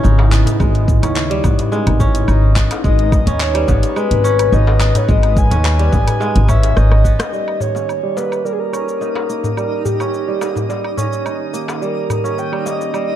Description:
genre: organic downtempo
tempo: 107 BPM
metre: 4/4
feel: straight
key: unclear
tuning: A4 = 439 Hz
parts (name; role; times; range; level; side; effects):
- warm analog pad; sustained chords; 0.0-13.2 s; C#3 to A#5; -26 LUFS; left 3 dB; chorus, sidechain pumping
- kora; arpeggios; 0.0-13.2 s; G3 to D#4; -22 LUFS; right 3 dB; low-pass filter, digital delay
- upright bass; bass; 0.0-7.1 s; G#1 to D#2; -14 LUFS; equal; tube saturation, sidechain pumping
- deep house drum kit; drums; 0.0-13.1 s; handclaps, hi-hat, rim click, shaker, woodblock; -26 LUFS; equal; none
- darbuka; percussion; 0.0-12.9 s; none; -24 LUFS; left 2 dB; none
- electronic kick drum; drums; 0.6-7.2 s; none; -16 LUFS; equal; none
- breathy flute-like synth lead; melody; 2.8-13.2 s; G4 to G#5; -20 LUFS; left 1 dB; lush chorus, ping-pong delay
- twinkling granular texture; texture; 8.0-13.2 s; D#4 to D#6; -30 LUFS; right 2 dB; built-in reverb
room: little or no reverb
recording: dark, warm production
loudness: -13 LUFS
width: side -11 dB against mid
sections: 0.0-7.3 A section; 7.3-13.2 B section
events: drum fill 6.8-7.3; band accent 7.2; filter sweep on kora 7.3-13.2; filter sweep on analog synth pad 7.3-13.2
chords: 0.0 C#m7/G#; 2.8 G#madd9; 7.3 D#

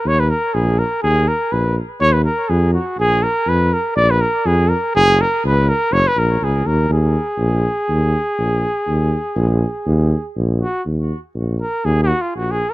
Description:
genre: balkan folk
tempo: 122 BPM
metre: 2/4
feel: swing 54% on 16ths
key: Eb minor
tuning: A4 = 438 Hz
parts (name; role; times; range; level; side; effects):
- warm trumpet; melody; 0.0-12.7 s; F4 to D5; -18 LUFS; equal; tape echo
- warm tuba; bass; 0.0-12.6 s; Gb1 to F2; -17 LUFS; equal; none
room: little or no reverb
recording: dry, close 1970s-style studio recording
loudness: -15 LUFS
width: side -18 dB against mid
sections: 0.0-3.0 A section; 3.0-10.8 A section; 10.8-12.7 B section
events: trumpet solo 10.8-12.7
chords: 0.0 Eb5; 3.0 Bb5; 4.9 Gb; 6.9 Eb5

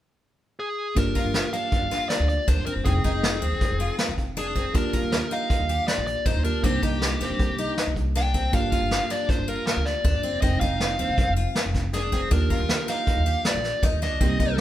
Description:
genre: progressive instrumental, band music in an uneven meter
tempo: 159 BPM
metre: 5/4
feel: straight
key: F dorian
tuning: A4 = 440 Hz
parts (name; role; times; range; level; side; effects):
- smooth overdriven lead guitar; melody; 0.6-14.6 s; G4 to G5; -28 LUFS; equal; none
- tine electric piano; accompaniment; 1.0-14.6 s; Ab3 to G5; -32 LUFS; right 2 dB; none
- picked twelve-string acoustic guitar; arpeggios; 1.0-14.6 s; C4 to G4; -31 LUFS; left 3 dB; none
- upright bass; bass; 1.0-14.6 s; E1 to G2; -27 LUFS; equal; none
- vintage brush drum kit; drums; 1.0-14.6 s; hi-hat, kick drum, snare drum; -25 LUFS; equal; none
room: moderate stone room reverb, RT60 1.1 s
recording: band playing live in one room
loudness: -22 LUFS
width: side -13 dB against mid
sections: 1.0-14.6 A section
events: none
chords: 0.0 N.C.; 1.0 Gm7; 2.9 Fm7; 4.7 Ebmaj7; 6.6 Cm7; 8.5 Gm7; 10.4 Fm7; 12.3 Ebmaj7

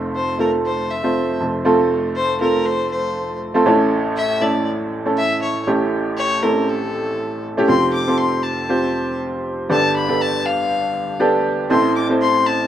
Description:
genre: pop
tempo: 119 BPM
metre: 4/4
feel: swing 56% on 16ths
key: unclear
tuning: A4 = 440 Hz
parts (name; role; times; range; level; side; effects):
- clear upright piano; accompaniment; 0.0-12.7 s; F1 to C5; -18 LUFS; right 1 dB; plate reverb
- warm fiddle; melody; 0.2-12.7 s; A4 to D6; -22 LUFS; left 4 dB; none
room: moderate studio reverb, RT60 0.5 s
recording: rough home demo mix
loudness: -16 LUFS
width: side -10 dB against mid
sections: 0.0-7.7 A section; 7.7-12.7 B section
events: none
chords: 0.0 F; 3.7 A; 7.7 Fadd9; 9.7 Gadd9; 11.7 Am

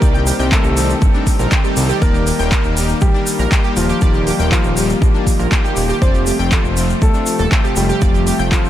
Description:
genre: progressive house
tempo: 120 BPM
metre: 4/4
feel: straight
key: unclear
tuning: A4 = 440 Hz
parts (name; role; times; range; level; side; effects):
- warm concert grand piano; melody; 0.0-8.7 s; F3 to C5; -22 LUFS; left 2 dB; ping-pong delay
- warm analog pad; sustained chords; 0.0-8.7 s; C3 to C4; -23 LUFS; left 1 dB; chorus, sidechain pumping
- analog pluck; arpeggios; 0.0-8.6 s; D4 to G5; -24 LUFS; right 3 dB; chorus, sidechain pumping, diffuse ambient delay
- soft supersaw; stabs; 0.0-8.7 s; F3 to A4; -23 LUFS; left 2 dB; vintage 12-bit sampler grit, sidechain pumping, diffuse ambient delay
- fat analog bass; bass; 0.0-8.7 s; Eb1 to C2; -19 LUFS; equal; sidechain pumping
- electronic kick drum; drums; 0.0-8.6 s; none; -14 LUFS; equal; none
- egg shaker; percussion; 0.0-8.7 s; none; -28 LUFS; left 2 dB; none
- deep house drum kit; drums; 0.3-8.6 s; handclaps, hi-hat; -23 LUFS; equal; sidechain pumping on hats
room: light reverb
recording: none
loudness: -12 LUFS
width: side -12 dB against mid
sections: 0.0-8.7 A section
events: none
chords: 0.0 Cm; 2.0 Eb; 6.0 F

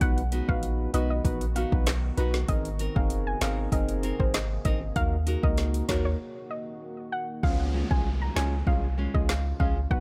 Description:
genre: dancehall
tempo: 97 BPM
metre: 4/4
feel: straight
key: Db major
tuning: A4 = 440 Hz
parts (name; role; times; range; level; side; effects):
- soft round pluck; melody; 0.0-10.0 s; C5 to Bb5; -37 LUFS; equal; chorus, digital delay
- percussive organ stab; accompaniment; 0.0-10.0 s; Ab3 to Cb5; -36 LUFS; equal; chorus
- deep dark ambient pad; sustained chords; 0.0-10.0 s; C3 to Ab4; -43 LUFS; equal; none
- punchy sub bass; bass; 0.0-10.0 s; Gb1 to Eb2; -31 LUFS; equal; none
- afro-pop drum kit; drums; 0.0-10.0 s; handclaps, hi-hat, kick drum, rim click, snare drum; -30 LUFS; equal; overdrive
- nylon-string guitar; arpeggios; 0.3-9.8 s; Ab3 to Bb4; -38 LUFS; equal; none
- downlifter; sound effects; 7.4-10.0 s; none; -43 LUFS; equal; none
room: little or no reverb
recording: none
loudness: -27 LUFS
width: mono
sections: 0.0-7.4 A section; 7.4-10.0 B section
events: break 6.2-7.4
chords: 0.0 Cb; 2.5 Abadd9; 5.0 Ebm; 7.4 Db

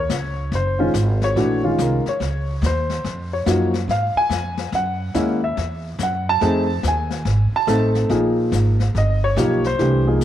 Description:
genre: jazz piano trio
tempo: 142 BPM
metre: 4/4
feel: swing 64% on 8ths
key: Bb minor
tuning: A4 = 440 Hz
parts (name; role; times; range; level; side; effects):
- warm baby grand piano; melody; 0.0-10.2 s; Eb3 to A5; -20 LUFS; equal; slapback echo
- upright bass; bass; 0.0-10.2 s; Gb1 to Ab2; -21 LUFS; right 1 dB; none
- jazz brush drum kit; drums; 0.1-10.2 s; brushed snare drum, hi-hat, snare drum; -30 LUFS; left 7 dB; none
room: moderate spring reverb, RT60 1.6 s, studio reverb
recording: 1960s-style stereo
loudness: -17 LUFS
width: side -11 dB against mid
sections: 0.0-10.2 A section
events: grand piano solo 0.0-10.2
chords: 0.0 Ebm7 (rootless); 1.4 Bbm7; 4.7 Gb7(no3); 6.4 F7#9; 8.1 Bb5; 8.9 G7alt

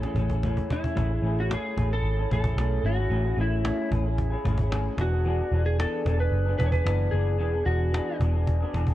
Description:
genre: indie pop, bedroom pop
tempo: 112 BPM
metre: 4/4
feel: straight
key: A major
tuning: A4 = 442 Hz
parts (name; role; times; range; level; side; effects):
- electric slide guitar; melody; 0.0-8.2 s; E4 to C#5; -31 LUFS; equal; lush chorus, analog delay
- electric guitar through a small old amp; accompaniment; 0.0-8.9 s; E3 to G#4; -31 LUFS; left 1 dB; lush chorus, vibrato effect
- soft electric-piano-like synth keys; accompaniment; 0.0-1.0 s; E3 to G#5; -37 LUFS; right 2 dB; chorus, cassette tape
- vintage muted picked electric bass; bass; 0.0-8.9 s; E1 to B1; -25 LUFS; equal; none
- cajon; drums; 0.0-8.9 s; none; -31 LUFS; equal; none
room: digital ambience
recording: dark, warm production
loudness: -23 LUFS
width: side -14 dB against mid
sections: 1.0-8.9 A section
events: drum fill 0.0-1.0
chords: 0.0 Amaj7; 5.0 E7

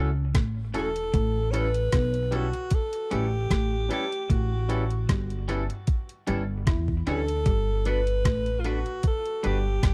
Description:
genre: lovers rock reggae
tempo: 76 BPM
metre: 4/4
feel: swing 54% on 16ths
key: unclear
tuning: A4 = 440 Hz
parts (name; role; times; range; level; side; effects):
- tine electric piano; accompaniment; 0.0-9.6 s; C#4 to B4; -36 LUFS; equal; none
- electric guitar through a small old amp; riff; 0.0-9.9 s; E3 to E4; -39 LUFS; equal; tape echo
- twangy electric guitar; stabs; 0.0-9.6 s; G3 to B4; -37 LUFS; equal; lush chorus
- upright bass; bass; 0.0-9.9 s; E1 to E2; -30 LUFS; equal; none
- gated 80s digital drum machine; drums; 0.3-9.9 s; hi-hat, kick drum, rim click; -27 LUFS; equal; overdrive
- breathy alto saxophone; melody; 0.8-9.9 s; F4 to C#5; -32 LUFS; equal; tape echo
room: digital ambience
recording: dry, close 1970s-style studio recording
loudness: -26 LUFS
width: mono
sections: 0.0-9.9 A section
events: none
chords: 0.0 Dmaj7 (rootless); 1.1 A7; 7.5 Gmaj7

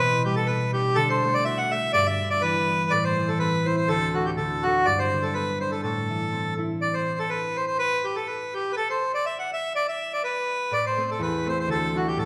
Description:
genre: celtic folk, Celtic polka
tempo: 123 BPM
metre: 2/4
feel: swing 54% on 8ths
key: A dorian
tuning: A4 = 440 Hz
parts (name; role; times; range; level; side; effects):
- accordion; melody; 0.0-12.3 s; F#4 to F#5; -26 LUFS; equal; none
- concert harp; accompaniment; 0.0-12.3 s; D2 to F#4; -30 LUFS; equal; none
room: wet stone room reverb, RT60 1.2 s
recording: band playing live in one room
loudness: -25 LUFS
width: mono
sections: 0.0-6.8 A section; 6.8-12.3 A section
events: none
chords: 0.0 G/B; 1.0 D; 1.9 G6; 2.9 Am; 3.9 D; 4.9 G; 5.8 Am; 6.8 N.C.; 10.7 Amadd9; 11.7 Dadd9

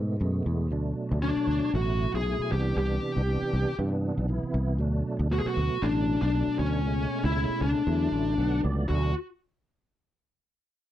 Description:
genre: electric jazz fusion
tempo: 118 BPM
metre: 4/4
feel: swing 54% on 16ths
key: D lydian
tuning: A4 = 440 Hz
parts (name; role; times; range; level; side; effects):
- tonewheel organ; accompaniment; 0.0-9.1 s; B2 to F#5; -32 LUFS; right 2 dB; slow rotary speaker, chorus vibrato
- sustaining fretless electric bass; bass; 0.0-9.1 s; A1 to G#2; -27 LUFS; equal; none
- bluesy overdriven lead guitar; melody; 1.2-9.1 s; C#4 to G#4; -28 LUFS; left 2 dB; distortion, slapback echo
room: little or no reverb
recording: dark, warm production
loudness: -25 LUFS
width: side -12 dB against mid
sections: 0.0-8.9 A section; 8.9-10.9 B section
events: tonewheel organ fill 8.1-8.9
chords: 0.0 Amaj7sus2; 0.7 D6; 2.5 Cmaj9; 4.8 D6; 6.8 Amaj9/C#; 7.9 E9sus4; 8.9 D6

